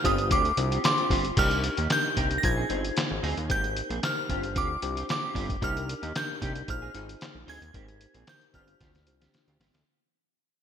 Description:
early-eighties boogie funk; 113 BPM; 4/4; straight; C minor; A4 = 440 Hz
glassy synth bell; melody; 0.0-9.6 s; C6 to Bb6; -29 LUFS; equal; chorus, ping-pong delay
mellow tine electric piano; accompaniment; 0.0-9.7 s; D4 to C5; -35 LUFS; left 3 dB; medium stereo tremolo
clean electric guitar; riff; 0.0-9.8 s; Bb3 to Ab4; -37 LUFS; right 7 dB; analog chorus
fat analog bass; bass; 0.0-9.8 s; G1 to Eb2; -32 LUFS; equal
lo-fi sampler-style drum kit; drums; 0.0-9.9 s; crash cymbal, handclaps, hi-hat, kick drum, snare drum; -30 LUFS; equal; gated reverb
moderate lush hall reverb, RT60 1.9 s; bright 1980s-style digital production; -25 LUFS; side -8 dB against mid
0.0-1.4 A section; 1.4-9.9 B section
fade-out 1.4-9.9; drum fill 8.8-9.9
0.0 G7sus4; 1.4 Cm7; 2.4 Bb9sus4; 3.5 Abmaj9; 4.3 G7sus4; 5.6 Cm7; 6.7 Bb9sus4; 7.7 Abmaj9; 8.5 G7sus4
0.31 0.84 | 1.37 1.90 2.43 2.96 | 3.49 4.03 4.56 5.09 | 5.62 6.15 6.68 7.21 | 7.74 8.27 8.80 9.34

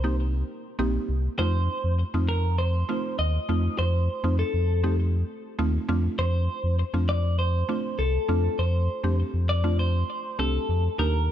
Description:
dance-pop; 100 BPM; 4/4; straight; A4 = 438 Hz
twelve-string electric guitar; melody; 0.0-11.3 s; A4 to Eb5; -30 LUFS; equal; ping-pong delay
mallet-like synth pluck; accompaniment; 0.0-11.3 s; A3 to G4; -31 LUFS; right 2 dB; chorus
sub bass with octave; bass; 0.0-11.3 s; Bb1 to F2; -24 LUFS; equal
digital ambience; dark, warm production; -23 LUFS; side -11 dB against mid
0.0-11.3 A section
0.0 Cm7; 1.4 F7; 5.9 Dm7
0.19 0.79 | 1.39 1.99 2.59 3.19 | 3.79 4.39 4.99 5.59 | 6.19 6.79 7.39 7.99 | 8.59 9.19 9.79 10.39 | 10.99

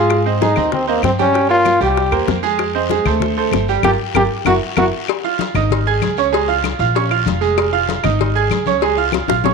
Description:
latin, salsa; 193 BPM; 4/4; straight; F minor; A4 = 440 Hz
clear trombone; melody; 0.0-4.9 s; Bb3 to G4; -17 LUFS; left 2 dB
bright concert grand piano; accompaniment; 0.0-9.5 s; G3 to Ab6; -18 LUFS; right 9 dB
upright bass; bass; 0.0-9.5 s; F1 to Ab2; -21 LUFS; left 2 dB
bongos and cowbell; percussion; 0.1-9.5 s; -23 LUFS; left 14 dB
claves; percussion; 0.1-9.3 s; -28 LUFS; left 14 dB
congas; percussion; 0.1-9.5 s; -25 LUFS; left 12 dB
guiro; percussion; 0.1-9.5 s; -32 LUFS; left 13 dB
moderate echo chamber reverb, RT60 1.3 s, small room ambience; 1960s-style stereo with parts hard left and right; -14 LUFS; side -4 dB against mid
0.0-5.1 A section; 5.1-9.5 B section
band accent 3.8-5.1; drum fill 9.1-9.5
0.1 Ab; 1.3 Gm7b5; 2.0 C7; 2.6 Fm7; 3.2 D5; 3.8 Gm7; 4.5 Gb7; 5.1 Fm; 5.7 Ab5; 6.3 Db; 7.0 Bbm; 7.6 Fm; 8.2 Ab5; 8.8 Db
| 0.10 0.41 0.72 1.03 | 1.35 1.66 1.97 2.28 | 2.59 2.90 3.21 3.53 | 3.84 4.15 4.46 4.77 | 5.08 5.39 5.71 6.02 | 6.33 6.64 6.95 7.26 | 7.57 7.88 8.20 8.51 | 8.82 9.13 9.44

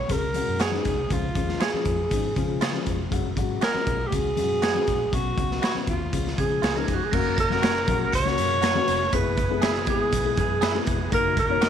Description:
uptempo 1960s-style soul; 120 BPM; 4/4; straight; F# major; A4 = 440 Hz
warm alto saxophone; melody; 0.0-11.7 s; E#4 to C#5; -26 LUFS; right 1 dB
vintage muted fingered electric bass; bass; 0.0-11.7 s; E#1 to C#3; -31 LUFS; right 1 dB
dark upright piano; accompaniment; 0.1-11.7 s; E#3 to C#5; -29 LUFS; left 10 dB
raw garage drum kit; drums; 0.1-11.7 s; crash cymbal, hi-hat, kick drum, snare drum; -27 LUFS; equal
twangy electric guitar; stabs; 0.6-11.7 s; E#4 to E5; -32 LUFS; right 11 dB; slapback echo
finger snap; percussion; 0.6-11.7 s; -37 LUFS; left 13 dB
glockenspiel with hard plastic mallets; second line; 6.4-11.7 s; F#6 to C#7; -33 LUFS; right 16 dB
overdriven tonewheel organ; sustained chords; 7.1-11.7 s; C#3 to G#4; -36 LUFS; right 1 dB; slow rotary speaker
congas; percussion; 7.1-11.7 s; -36 LUFS; right 12 dB
light reverb, small room ambience; 1960s-style stereo with parts hard left and right; -22 LUFS; side -8 dB against mid
0.0-7.1 A section; 7.1-11.7 B section
0.0 F#sus2; 1.1 C#; 3.1 F#sus2; 5.1 Bsus2; 6.1 C#; 7.1 F#; 9.1 E/F#; 11.1 D#m/F#
0.10 0.60 | 1.10 1.61 2.11 2.61 | 3.12 3.62 4.12 4.63 | 5.13 5.63 6.13 6.63 | 7.13 7.63 8.13 8.63 | 9.13 9.63 10.13 10.63 | 11.13 11.62

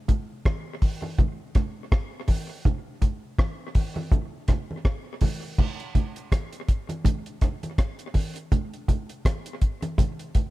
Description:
reggae; 82 BPM; 4/4; swing 57% on 16ths
deep reggae drum kit; drums; 0.1-10.5 s; crash cymbal, hi-hat, kick drum, rim click; -23 LUFS; equal
congas; percussion; 0.1-10.5 s; -32 LUFS; right 5 dB
little or no reverb; -24 LUFS; side -17 dB against mid
0.0-5.6 A section; 5.6-10.5 B section
0.45 1.19 1.92 | 2.65 3.38 4.12 4.85 | 5.58 6.32 7.05 7.78 | 8.52 9.25 9.98

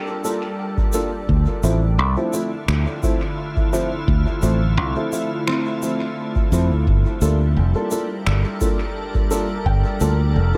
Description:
ambient dub; 86 BPM; 4/4; swing 53% on 16ths; G dorian; A4 = 439 Hz
soft additive organ-like pad; sustained chords; 0.0-10.6 s; D3 to Bb4; -30 LUFS; equal; ensemble chorus, built-in reverb
concert harp; arpeggios; 0.0-10.6 s; C4 to G5; -36 LUFS; equal; dub echo
dark upright piano; stabs; 0.2-10.6 s; F3 to A4; -28 LUFS; equal; dub echo
shaker and finger snaps; drums; 0.2-10.2 s; -34 LUFS; equal; dub echo
electronic kick drum; drums; 0.8-9.8 s; -24 LUFS; equal
fingered electric bass; bass; 1.3-10.5 s; F1 to F2; -20 LUFS; equal
small room ambience; -20 LUFS; mono
0.0-10.6 A section
0.0 Gm7; 1.3 Dm7; 6.9 Gm7
0.59 | 1.29 1.99 2.69 3.38 | 4.08 4.78 5.48 6.17 | 6.87 7.57 8.27 8.96 | 9.66 10.36

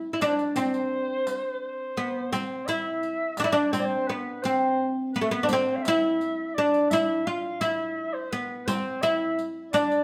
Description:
Turkish makam ensemble; 170 BPM (eighths); 9/8; straight; C makam rast; A4 = 440 Hz
oud; melody; 0.0-10.0 s; A3 to F4; -28 LUFS; equal
warm clarinet; second line; 0.2-10.0 s; B4 to F5; -32 LUFS; equal
riq; percussion; 0.2-10.0 s; -38 LUFS; equal
wet studio reverb, RT60 0.8 s; band playing live in one room; -26 LUFS; mono
0.0-10.0 A section
0.19 0.55 0.90 1.25 1.61 1.96 | 2.31 2.67 3.02 3.37 3.73 4.08 4.43 4.78 5.14 | 5.49 5.84 6.20 6.55 6.90 7.25 7.61 7.96 8.31 | 8.66 9.02 9.37 9.72

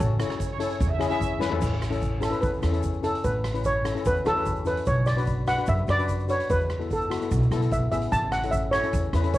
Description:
calypso; 148 BPM; 4/4; straight; A major; A4 = 440 Hz
steel pan; melody; 0.0-9.4 s; A4 to A5; -26 LUFS; right 1 dB; cassette tape
upright bass; bass; 0.0-9.4 s; A1 to F#2; -27 LUFS; right 1 dB
street-band drum kit; drums; 0.0-9.4 s; crash cymbal, hi-hat, kick drum, rim click, snare drum, toms; -30 LUFS; right 1 dB
tube shaker; percussion; 0.0-9.4 s; -49 LUFS; right 11 dB
mellow horn section; second line; 0.2-1.6 s; C#5 to E5; -33 LUFS; right 8 dB; cassette tape
steel pan; accompaniment; 0.2-9.4 s; B3 to B4; -30 LUFS; left 7 dB; cassette tape
light reverb; home recording on cassette; -23 LUFS; side -15 dB against mid
0.0-1.6 A section; 1.6-9.4 B section
drum fill 1.4; steel pan solo 1.6-9.4
0.0 Amaj7; 1.6 A; 4.9 Bm; 6.5 Esus4; 8.1 A
| 0.00 0.40 0.81 1.22 | 1.62 2.03 2.43 2.84 | 3.25 3.65 4.06 4.47 | 4.87 5.28 5.68 6.09 | 6.50 6.90 7.31 7.71 | 8.12 8.53 8.93 9.34

